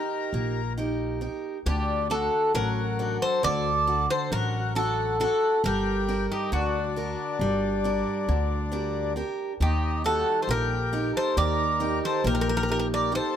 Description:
greek folk, Greek bouzouki band; 136 BPM (eighths); 9/8; straight; D phrygian dominant; A4 = 440 Hz
Greek bouzouki; melody; 0.0-13.4 s; F#4 to D5; -26 LUFS; equal
accordion; second line; 0.0-13.4 s; D4 to Bb4; -32 LUFS; left 7 dB
picked acoustic archtop guitar; accompaniment; 0.0-13.4 s; D3 to Bb4; -30 LUFS; right 2 dB
upright bass; bass; 0.3-13.2 s; G1 to Eb2; -29 LUFS; equal
light reverb; -24 LUFS; side -9 dB against mid
0.0-1.7 A section; 1.7-13.4 B section
0.0 Eb; 1.7 D; 5.6 Gm; 9.6 Eb
0.32 0.77 1.21 | 1.65 2.10 2.54 2.98 3.42 3.87 4.31 4.75 5.19 | 5.63 6.08 6.52 6.96 7.40 7.84 8.28 8.72 9.16 | 9.61 10.05 10.49 10.93 11.37 11.81 12.25 12.69 13.13

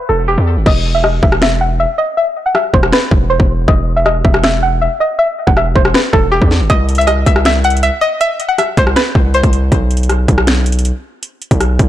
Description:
hip hop, trap; 159 BPM; 4/4; half-time; A4 = 444 Hz
string-like resonator pluck; melody; 0.0-9.5 s; G4 to F#5; -14 LUFS; left 1 dB; chorus, low-pass filter, ping-pong delay
distorted 808-style bass; bass; 0.1-11.9 s; E1 to E2; -14 LUFS; equal; distortion
trap drum kit; drums; 0.7-11.9 s; crash cymbal, finger snaps, hi-hat, kick drum, rim click, snare drum; -13 LUFS; equal; overdrive, vintage 12-bit sampler grit
light reverb; blown-out, overdriven recording, overdrive, low-pass filter; -10 LUFS; side -12 dB against mid
0.7-11.9 A section
hi-hats muted 0.7-6.7; filter sweep on synth pluck 0.7-6.7
0.0 Em; 0.7 N.C.; 6.7 C; 9.7 N.C.
0.28 | 0.66 1.04 1.42 1.79 | 2.17 2.55 2.92 3.30 | 3.68 4.06 4.43 4.81 | 5.19 5.57 5.94 6.32 | 6.70 7.08 7.45 7.83 | 8.21 8.59 8.96 9.34 | 9.72 10.10 10.47 10.85 | 11.23 11.61

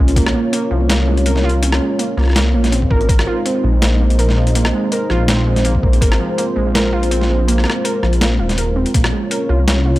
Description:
half-time drum and bass; 164 BPM; 4/4; swing 53% on 16ths, half-time; A4 = 439 Hz
dark analog pad; sustained chords; 0.0-10.0 s; Ab3 to Db5; -21 LUFS; left 1 dB; chorus, vintage 12-bit sampler grit, sidechain pumping
warbly dusty pluck; arpeggios; 0.0-10.0 s; F3 to Bb4; -20 LUFS; right 2 dB; chorus, tape echo
phased detuned saw bass; bass; 0.0-10.0 s; Eb1 to C2; -16 LUFS; equal; phaser
boom bap sampler-style drum kit; drums; 0.1-10.0 s; hi-hat, rim click, snare drum; -20 LUFS; left 1 dB; overdrive
electronic kick drum; drums; 0.2, 2.8-3.2, 5.7-6.1, 8.9-9.0 s; -15 LUFS; equal; overdrive
digital ambience; dry, gritty hardware recording, transformer saturation; -13 LUFS; side -17 dB against mid
0.0-10.0 A section
break 8.6-8.9
0.0 Bbm; 3.1 Ab; 8.9 Bbm
| 0.16 0.53 0.90 1.26 | 1.63 1.99 2.36 2.72 | 3.09 3.46 3.82 4.19 | 4.55 4.92 5.29 5.65 | 6.02 6.38 6.75 7.12 | 7.48 7.85 8.21 8.58 | 8.94 9.31 9.68

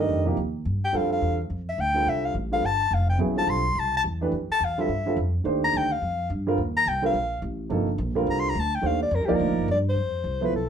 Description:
modal jazz; 213 BPM; 4/4; swing 62% on 8ths; A4 = 440 Hz
breathy soprano saxophone; melody; 0.0-10.7 s; G4 to C6; -25 LUFS; left 2 dB
warm baby grand piano; accompaniment; 0.0-10.5 s; C3 to D5; -26 LUFS; right 3 dB
upright bass; bass; 0.0-10.7 s; F1 to G2; -28 LUFS; equal
wet studio reverb, RT60 0.5 s; band playing live in one room; -22 LUFS; side -8 dB against mid
0.0-10.0 A section
soprano saxophone solo 0.0-10.0
0.0 Ebmaj9; 0.9 Fmaj9; 5.4 Ebmaj9; 10.0 Fmaj7
0.08 0.37 0.65 | 0.93 1.21 1.50 1.78 | 2.06 2.34 2.63 2.91 | 3.19 3.47 3.76 4.04 | 4.32 4.60 4.88 5.17 | 5.45 5.73 6.01 6.29 | 6.58 6.86 7.14 7.42 | 7.70 7.99 8.27 8.55 | 8.83 9.11 9.39 9.68 | 9.96 10.24 10.52

